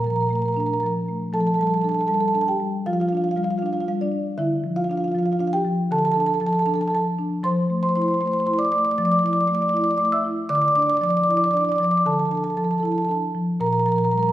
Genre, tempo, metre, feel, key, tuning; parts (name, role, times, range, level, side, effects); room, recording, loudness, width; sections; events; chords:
classical, contemporary piece for solo marimba; 78 BPM; 4/4; straight; F major; A4 = 441 Hz
marimba with soft mallets; solo; 0.0-14.3 s; Bb2 to E6; -19 LUFS; equal
wet recital hall reverb, RT60 1.6 s; heard from further back in the room; -19 LUFS; side -13 dB against mid
0.0-14.3 A section
0.0 Bbmaj7; 1.3 F69; 4.4 Dmadd9; 7.4 Fmaj7; 10.5 Dmadd9; 13.6 Bb5